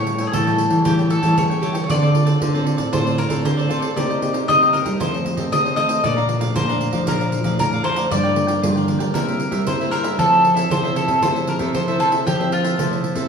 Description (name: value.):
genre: samba and choro.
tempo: 116 BPM.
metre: 4/4.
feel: straight.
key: F major.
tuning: A4 = 440 Hz.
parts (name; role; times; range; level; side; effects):
bowl-back mandolin; second line; 0.0-13.3 s; F4 to Eb5; -20 LUFS; left 2 dB; none.
cavaquinho; accompaniment; 0.0-13.3 s; Eb4 to Bb5; -28 LUFS; right 3 dB; none.
nylon-string guitar; accompaniment; 0.0-13.3 s; F2 to A4; -24 LUFS; left 1 dB; none.
nylon-string guitar; bass; 0.0-13.3 s; G2 to G3; -22 LUFS; right 1 dB; none.
pandeiro; percussion; 0.1-13.3 s; none; -26 LUFS; right 3 dB; none.
room: wet large studio reverb, RT60 1.2 s.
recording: band playing live in one room, studio reverb.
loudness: -16 LUFS.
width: side -6 dB against mid.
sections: 0.0-13.3 A section.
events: none.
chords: 0.0 A7; 1.9 Dm7; 4.0 Cm7; 5.0 F7; 6.0 Bbmaj7; 8.1 Gm7; 9.2 C7; 10.2 Fmaj7.